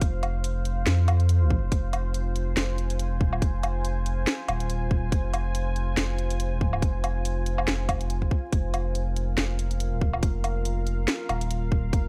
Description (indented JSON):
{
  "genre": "deep dubstep",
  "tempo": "141 BPM",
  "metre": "4/4",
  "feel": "swing 56% on 16ths, half-time",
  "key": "F minor",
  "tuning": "A4 = 439 Hz",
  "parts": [
    { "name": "deep dark ambient pad", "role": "sustained chords", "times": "0.0-12.1 s", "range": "F4 to Ab5", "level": "-38 LUFS", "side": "equal", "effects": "chorus, built-in reverb" },
    { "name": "saturated sub bass", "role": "bass", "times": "0.0-12.1 s", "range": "Eb1 to F2", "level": "-28 LUFS", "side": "equal", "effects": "tube saturation" },
    { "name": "electronic kick drum", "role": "drums", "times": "0.0-12.0 s", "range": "none", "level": "-26 LUFS", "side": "equal", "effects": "overdrive, studio reverb" },
    { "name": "garage drum kit", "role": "drums", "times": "0.0-12.0 s", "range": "hi-hat, snare drum, woodblock", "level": "-31 LUFS", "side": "equal", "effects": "overdrive, studio reverb" }
  ],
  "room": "little or no reverb",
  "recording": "vinyl crackle",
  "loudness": "-26 LUFS",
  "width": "mono",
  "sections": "0.0-12.1 A section",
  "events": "none",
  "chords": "0.0 Fm",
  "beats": "| 0.01 0.44 0.87 1.29 | 1.72 2.14 2.57 2.99 | 3.42 3.85 4.27 4.70 | 5.12 5.55 5.97 6.40 | 6.82 7.25 7.67 8.10 | 8.53 8.95 9.38 9.80 | 10.23 10.65 11.08 11.51 | 11.93"
}